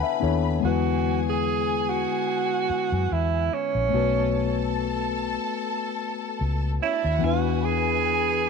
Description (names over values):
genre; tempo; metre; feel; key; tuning
soul; 73 BPM; 4/4; swing 54% on 16ths; unclear; A4 = 440 Hz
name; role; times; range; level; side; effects
rich studio string section; second line; 0.0-8.5 s; C#4 to B5; -32 LUFS; left 3 dB; none
mellow tine electric piano; accompaniment; 0.0-8.5 s; D3 to A5; -27 LUFS; left 12 dB; medium stereo tremolo
mellow French horn section; sustained chords; 0.0-0.6 s; D3 to C#5; -49 LUFS; left 1 dB; none
vintage muted fingered electric bass; bass; 0.2-8.5 s; A#1 to F#2; -27 LUFS; left 1 dB; none
mellow tenor saxophone; melody; 0.7-8.5 s; C#4 to G#4; -25 LUFS; right 7 dB; none
room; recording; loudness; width
moderate echo chamber reverb, RT60 2.3 s; 1960s-style stereo with parts hard left and right; -22 LUFS; side -5 dB against mid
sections
0.6-8.5 A section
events
tine electric piano fill 0.0-0.6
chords
0.0 Bm11; 0.6 E7; 3.9 B7(no3); 7.2 E7